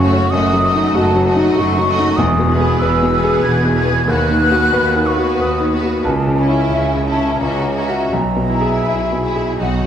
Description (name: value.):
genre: classical, romantic movement for piano and orchestra.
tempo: 81-98 BPM.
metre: 3/4.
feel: rubato.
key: E major.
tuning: A4 = 440 Hz.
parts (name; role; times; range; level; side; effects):
clear concert grand piano; melody; 0.0-9.9 s; B1 to E5; -16 LUFS; left 1 dB; none.
warm symphonic violin section; melody; 0.0-9.9 s; B4 to F#5; -28 LUFS; left 3 dB; none.
clear symphonic violin section; second line; 0.0-9.9 s; E4 to G#4; -26 LUFS; left 3 dB; none.
mellow hollow small flute group; second line; 0.0-9.6 s; G#5 to G#6; -20 LUFS; equal; none.
rich symphonic viola section; accompaniment; 0.0-9.9 s; A3 to E4; -24 LUFS; right 1 dB; none.
clear symphonic double bass section; bass; 0.0-9.9 s; E1 to D#2; -23 LUFS; right 2 dB; none.
warm symphonic cello section; bass; 0.0-9.9 s; D#2 to C#3; -23 LUFS; right 2 dB; none.
timpani; percussion; 2.2-3.1, 9.6-9.9 s; E2 to B2; -28 LUFS; left 2 dB; none.
room: moderate scoring stage reverb, RT60 1.6 s.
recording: none.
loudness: -13 LUFS.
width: side -9 dB against mid.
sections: 0.0-9.9 A section.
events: timpani fill 9.6.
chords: 0.3 D#dim/F#; 2.2 E; 4.1 B/D#; 6.1 C#m; 8.1 E/B.